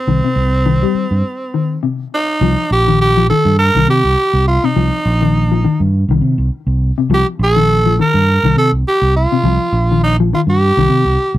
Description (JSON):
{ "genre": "afrobeat", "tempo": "102 BPM", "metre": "4/4", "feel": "swing 56% on 16ths", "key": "C dorian", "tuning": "A4 = 435 Hz", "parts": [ { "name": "raspy tenor saxophone", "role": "melody", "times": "0.0-11.3 s", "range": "C4 to Bb4", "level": "-15 LUFS", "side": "right 2 dB", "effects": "none" }, { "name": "mellow electric guitar", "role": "arpeggios", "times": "0.1-11.0 s", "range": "C3 to G3", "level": "-17 LUFS", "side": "left 6 dB", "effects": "spring reverb" }, { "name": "fingered electric bass", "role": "bass", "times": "0.1-11.4 s", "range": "Bb1 to C3", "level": "-14 LUFS", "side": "right 1 dB", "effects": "none" } ], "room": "light reverb", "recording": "dry, close 1970s-style studio recording", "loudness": "-11 LUFS", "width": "side -14 dB against mid", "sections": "0.0-2.4 A section; 2.4-11.4 B section", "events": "break 1.2-2.4", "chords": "0.0 Cm; 2.4 Cm7" }